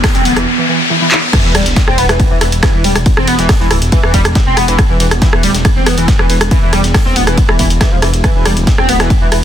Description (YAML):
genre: driving peak-time techno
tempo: 139 BPM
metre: 4/4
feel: straight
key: E minor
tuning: A4 = 441 Hz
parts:
  - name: dark detuned saw bass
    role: bass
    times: 0.0-9.4 s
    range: D1 to F1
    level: -16 LUFS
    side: equal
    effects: sidechain pumping
  - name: swarming drone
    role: drone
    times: 0.0-0.5 s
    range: E3 to B3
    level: -21 LUFS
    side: right 1 dB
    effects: built-in reverb, sidechain pumping
  - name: breakbeat sampler-style drum kit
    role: drums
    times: 0.0-9.4 s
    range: hi-hat, ride cymbal, snare drum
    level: -25 LUFS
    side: right 2 dB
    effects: sidechain pumping on cymbals, high-pass filter on cymbals, high-pass filter on snare, sidechain pumping on hats, high-pass filter on hats
  - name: electronic kick drum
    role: drums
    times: 0.0-9.2 s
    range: none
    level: -12 LUFS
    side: equal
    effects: none
  - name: punchy analog drum machine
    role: drums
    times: 0.0-9.4 s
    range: crash cymbal, handclaps, hi-hat, ride cymbal, rim click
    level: -16 LUFS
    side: equal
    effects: soft clipping on snare, sidechain pumping on hats, sidechain pumping on cymbals
  - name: riser and sub drop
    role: sound effects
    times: 0.0-3.1 s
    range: none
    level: -17 LUFS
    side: left 2 dB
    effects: none
  - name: overdriven synth lead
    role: riff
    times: 0.1-9.4 s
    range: E3 to E4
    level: -16 LUFS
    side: equal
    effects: ensemble chorus, sidechain pumping, ping-pong delay
room: digital ambience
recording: dense, heavily limited modern master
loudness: -9 LUFS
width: side -10 dB against mid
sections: 0.0-1.3 A section; 1.3-9.4 B section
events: riser 0.0-1.3; drum fill 1.1; drop 1.3-9.4; impact 1.3-3.1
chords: 0.0 E5; 1.3 N.C.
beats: 0.04 0.47 0.90 | 1.33 1.76 2.20 2.63 | 3.06 3.49 3.92 4.35 | 4.79 5.22 5.65 6.08 | 6.51 6.94 7.38 7.81 | 8.24 8.67 9.10